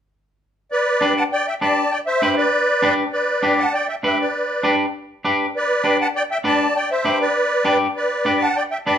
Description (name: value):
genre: latin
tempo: 199 BPM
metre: 4/4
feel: straight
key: G major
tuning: A4 = 440 Hz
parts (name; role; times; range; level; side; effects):
- musette accordion; melody; 0.7-9.0 s; B4 to A5; -18 LUFS; equal; none
- semi-hollow electric guitar; accompaniment; 1.0-9.0 s; D4 to B4; -20 LUFS; left 1 dB; none
room: moderate large studio reverb, RT60 0.9 s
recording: minimal, uncompressed stereo recording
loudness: -17 LUFS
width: side -9 dB against mid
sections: 0.7-9.0 A section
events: none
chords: 0.7 G